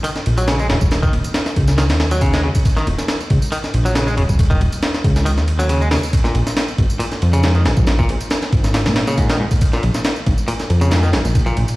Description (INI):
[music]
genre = breakbeat, breaks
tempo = 138 BPM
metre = 4/4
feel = swing 54% on 16ths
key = Eb minor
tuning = A4 = 440 Hz
[part]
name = direct-recorded clean electric guitar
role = riff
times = 0.0-11.6 s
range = Ab2 to Ab3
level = -23 LUFS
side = equal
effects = tube saturation, low-pass filter, tape echo
[part]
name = breakbeat sampler-style drum kit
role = drums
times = 0.0-11.8 s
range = hi-hat, kick drum, ride cymbal, snare drum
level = -18 LUFS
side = equal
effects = none
[part]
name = tambourine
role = drums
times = 0.0-11.8 s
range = none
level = -34 LUFS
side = right 2 dB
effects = overdrive
[part]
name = fat analog bass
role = bass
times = 0.3-11.7 s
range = Eb1 to Bb2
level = -16 LUFS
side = equal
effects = none
[sound]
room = light reverb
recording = played on a big sound system in a bare room, stone room reverb, vinyl crackle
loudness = -14 LUFS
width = side -20 dB against mid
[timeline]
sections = 0.0-11.8 A section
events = none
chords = 0.0 Eb7(no3); 6.1 Bb7(no3)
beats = 0.04 0.48 | 0.92 1.35 1.78 2.22 | 2.65 3.09 3.52 3.96 | 4.39 4.83 5.26 5.70 | 6.13 6.57 7.00 7.44 | 7.87 8.31 8.74 9.18 | 9.61 10.04 10.48 10.91 | 11.35